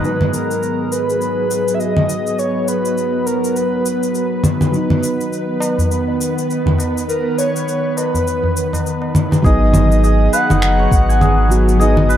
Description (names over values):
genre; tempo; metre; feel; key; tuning
organic downtempo; 102 BPM; 4/4; swing 59% on 16ths; G# minor; A4 = 440 Hz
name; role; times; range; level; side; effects
breathy flute-like synth lead; melody; 0.0-12.2 s; A#4 to F#5; -20 LUFS; equal; analog chorus, digital delay
felt-muted upright piano; accompaniment; 0.0-12.2 s; G#2 to F#4; -23 LUFS; equal; sidechain pumping, low-pass filter
bowed-like drone; sustained chords; 0.0-12.2 s; D#3 to B4; -21 LUFS; equal; built-in reverb, sidechain pumping
santur; arpeggios; 0.0-2.6, 9.4-12.2 s; D#4 to G#5; -22 LUFS; equal; tape echo
electronic shaker, congas and finger snaps; drums; 0.0-12.2 s; none; -19 LUFS; equal; overdrive
tabla; percussion; 5.6-9.4 s; none; -22 LUFS; equal; none
warm sub bass; bass; 9.4-12.2 s; F#1 to G#1; -14 LUFS; equal; none
electronic kick drum; drums; 9.4-11.1 s; none; -14 LUFS; equal; overdrive
room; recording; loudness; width
moderate lush hall reverb, RT60 1.6 s; dark, warm production; -14 LUFS; side -10 dB against mid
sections
0.0-9.4 A section; 9.4-12.2 B section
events
filter sweep on felt piano 0.0-9.4; filter sweep on synth drone 0.0-9.4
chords
0.0 G#m7; 4.7 B; 9.4 G#m7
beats
| 0.03 0.62 1.21 1.79 | 2.38 2.97 3.56 4.15 | 4.74 5.32 5.91 6.50 | 7.09 7.68 8.27 8.85 | 9.44 10.03 10.62 11.21 | 11.79